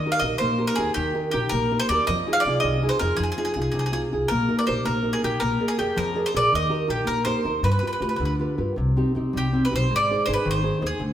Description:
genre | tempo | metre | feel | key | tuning
italian folk, Italian serenade | 108 BPM (dotted quarters) | 6/8 | rubato | Eb major | A4 = 440 Hz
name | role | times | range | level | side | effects
bowl-back mandolin | melody | 0.0-11.0 s | G4 to F5 | -24 LUFS | equal | none
nylon-string guitar | accompaniment | 0.0-11.1 s | C3 to D5 | -25 LUFS | equal | none
upright bass | bass | 0.2-11.1 s | Ab1 to G2 | -27 LUFS | equal | none
room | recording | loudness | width
wet stone room reverb, RT60 1.3 s | band playing live in one room, faint mains hum | -21 LUFS | side -10 dB against mid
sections
0.0-8.8 A section; 8.8-11.1 B section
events
none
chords
0.0 Eb; 2.1 Fm7; 4.3 Eb/Bb; 5.4 Bb7; 6.5 Eb; 7.6 G7; 8.8 Cm; 9.9 Ab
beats
0.41 | 0.97 1.53 | 2.08 2.63 | 3.18 3.75 | 4.31 4.87 | 5.43 5.98 | 6.53 7.09 | 7.64 8.21 | 8.78 9.35 | 9.91 10.46 | 11.01

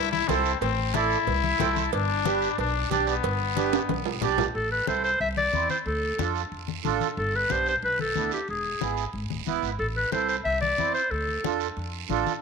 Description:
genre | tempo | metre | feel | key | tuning
latin, cumbia | 183 BPM | 4/4 | straight | A minor | A4 = 440 Hz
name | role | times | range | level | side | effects
growling trumpet | second line | 0.0-4.4 s | B3 to E4 | -27 LUFS | left 9 dB | none
upright bass | bass | 0.0-12.2 s | D1 to F2 | -32 LUFS | equal | none
congas | percussion | 0.1-12.4 s | none | -33 LUFS | left 13 dB | none
accordion | accompaniment | 0.3-12.3 s | B3 to A5 | -29 LUFS | right 12 dB | none
cowbell and timbales | percussion | 0.3-4.5 s | none | -32 LUFS | right 14 dB | none
guiro | percussion | 0.3-12.4 s | none | -39 LUFS | right 15 dB | none
clear clarinet | melody | 4.6-11.6 s | G4 to E5 | -26 LUFS | left 1 dB | none
room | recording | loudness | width
moderate spring reverb, RT60 1.7 s, small room ambience | 1960s-style stereo with parts hard left and right | -24 LUFS | side -5 dB against mid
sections
0.0-4.5 A section; 4.5-12.4 B section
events
accordion fill 1.3-1.9, 4.1-4.5; drum fill 3.7-4.5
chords
0.0 Am; 1.9 G; 4.5 Am; 5.9 Dm; 7.2 G; 8.5 E; 9.8 Am; 11.1 Dm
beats
0.29 | 0.62 0.94 1.27 1.60 | 1.93 2.25 2.58 2.91 | 3.24 3.56 3.89 4.22 | 4.55 4.88 5.20 5.53 | 5.86 6.19 6.52 6.84 | 7.17 7.50 7.83 8.16 | 8.48 8.81 9.14 9.47 | 9.80 10.12 10.45 10.78 | 11.11 11.44 11.77 12.09

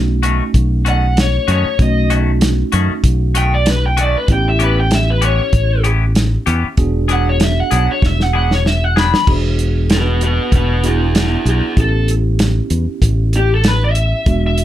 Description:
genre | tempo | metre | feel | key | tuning
straight-eighth soul blues | 96 BPM | 4/4 | swing 53% on 16ths | E mixolydian | A4 = 439 Hz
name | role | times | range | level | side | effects
tine electric piano | accompaniment | 0.0-14.6 s | G#3 to G#4 | -23 LUFS | right 3 dB | phaser
fingered electric bass | bass | 0.0-14.6 s | E1 to F#2 | -15 LUFS | equal | none
clean electric guitar | stabs | 0.2-9.2 s | D#3 to G#4 | -20 LUFS | left 7 dB | lush chorus, slapback echo
warm soul drum kit | drums | 0.2-14.6 s | crash cymbal, hi-hat, kick drum, snare drum | -16 LUFS | equal | none
lead guitar through a small cranked amp | melody | 0.9-14.6 s | E4 to B5 | -18 LUFS | equal | overdrive, slapback echo
room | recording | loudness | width
light reverb | none | -12 LUFS | side -12 dB against mid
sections
0.0-9.3 A section; 9.3-14.6 A section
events
drum fill 8.0-9.3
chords
0.0 B9; 4.3 A9; 6.8 E9; 11.8 A9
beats
0.54 1.17 | 1.79 2.42 3.04 3.67 | 4.29 4.91 5.54 6.16 | 6.78 7.41 8.03 8.65 | 9.28 9.90 10.53 11.15 | 11.77 12.39 13.02 13.64 | 14.26

